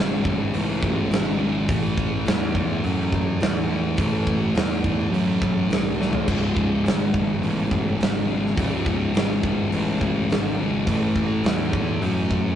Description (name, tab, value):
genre	stoner and doom metal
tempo	104 BPM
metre	4/4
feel	straight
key	C# minor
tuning	A4 = 435 Hz
part	thick fuzz guitar	riff	0.0-12.6 s	C#2 to A3	-26 LUFS	left 4 dB	distortion
part	thick fuzz guitar	riff	0.0-12.6 s	C#2 to A3	-30 LUFS	right 6 dB	distortion
part	fuzz picked electric bass	bass	0.0-12.6 s	C#1 to F#2	-25 LUFS	right 1 dB	overdrive
part	big rock drum kit	drums	0.3-12.4 s	crash cymbal, hi-hat, kick drum, snare drum, toms	-24 LUFS	right 1 dB	none
room	light reverb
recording	rough rehearsal-room recording, warm saturation, nothing above 11.0 kHz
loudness	-20 LUFS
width	side -10 dB against mid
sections	0.0-12.6 A section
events	drum fill 6.0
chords	0.0 C#5; 1.7 A5; 6.3 C#5; 10.9 A5